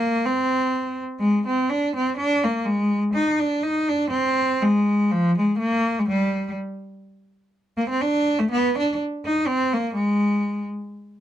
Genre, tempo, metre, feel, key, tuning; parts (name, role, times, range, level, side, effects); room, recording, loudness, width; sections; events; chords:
alpine folk; 124 BPM; 2/4; swing 55% on 8ths; A4 = 437 Hz
bright cello; solo; 0.0-10.6 s; F3 to Eb4; -20 LUFS; equal
moderate small room reverb, RT60 0.5 s; dark, warm production; -20 LUFS; side -11 dB against mid
0.0-7.0 A section; 7.0-11.2 B section